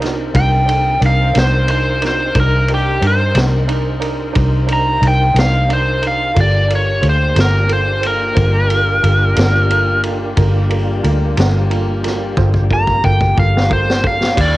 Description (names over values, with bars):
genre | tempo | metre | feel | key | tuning
slow blues | 60 BPM (dotted quarters) | 12/8 | straight | G minor | A4 = 439 Hz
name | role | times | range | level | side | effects
bright upright piano | accompaniment | 0.0-14.6 s | D4 to D5 | -24 LUFS | right 9 dB | cassette tape
tonewheel organ | sustained chords | 0.0-14.6 s | Eb3 to D5 | -27 LUFS | equal | slow rotary speaker, chorus vibrato, cassette tape
warm saxophone section | sustained chords | 0.0-14.6 s | Bb3 to Bb4 | -28 LUFS | left 9 dB | cassette tape
vintage muted fingered electric bass | bass | 0.0-14.6 s | G1 to G2 | -15 LUFS | equal | none
vintage drum kit | drums | 0.0-14.5 s | crash cymbal, kick drum, ride cymbal, snare drum | -21 LUFS | equal | none
biting lead guitar | melody | 0.4-14.6 s | G4 to Bb5 | -16 LUFS | equal | overdrive, cassette tape
room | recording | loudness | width
small room ambience | home recording on cassette | -12 LUFS | side -17 dB against mid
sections
0.0-14.6 A section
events
drum fill 12.4-14.4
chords
0.0 Cm7; 6.4 Gm7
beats
0.35 1.35 | 2.35 3.35 4.36 5.36 | 6.36 7.36 8.37 9.37 | 10.37 11.37 12.37 13.37 | 14.37